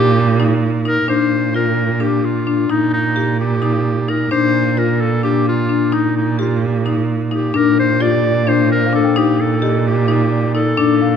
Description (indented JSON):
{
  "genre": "contemporary instrumental, chamber music in an uneven meter",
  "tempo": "260 BPM (eighths)",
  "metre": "7/8",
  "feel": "straight",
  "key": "unclear",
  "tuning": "A4 = 441 Hz",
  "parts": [
    { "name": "bright clarinet", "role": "melody", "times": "0.0-11.2 s", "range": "Eb4 to D5", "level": "-20 LUFS", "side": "equal", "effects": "none" },
    { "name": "marimba with medium mallets", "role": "arpeggios", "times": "0.0-11.2 s", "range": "D4 to G4", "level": "-18 LUFS", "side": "left 7 dB", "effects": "none" },
    { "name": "warm cello", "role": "bass", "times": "0.0-11.2 s", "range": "Bb2", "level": "-18 LUFS", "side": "right 6 dB", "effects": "none" },
    { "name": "large celesta", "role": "texture", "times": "8.0-11.2 s", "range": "G4 to G5", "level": "-27 LUFS", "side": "left 5 dB", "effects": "none" }
  ],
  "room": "light reverb",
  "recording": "none",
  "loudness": "-14 LUFS",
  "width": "side -7 dB against mid",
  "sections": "0.0-1.1 A section; 1.1-11.2 B section",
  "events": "none",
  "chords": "0.0 Eb/Bb; 1.1 Bbadd9; 2.7 Eb/Bb; 4.3 Dm/Bb; 5.9 Eb/Bb; 7.5 Bbadd9; 9.2 Eb/Bb",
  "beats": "0.16 0.39 0.62 0.85 | 1.09 1.32 1.55 1.78 2.01 2.24 2.47 | 2.70 2.93 3.16 3.39 3.62 3.85 4.08 | 4.32 4.55 4.78 5.01 5.24 5.47 5.70 | 5.93 6.16 6.39 6.62 6.86 7.09 7.32 | 7.55 7.78 8.01 8.24 8.47 8.70 8.93 | 9.16 9.40 9.63 9.86 10.09 10.32 10.55 | 10.78 11.01"
}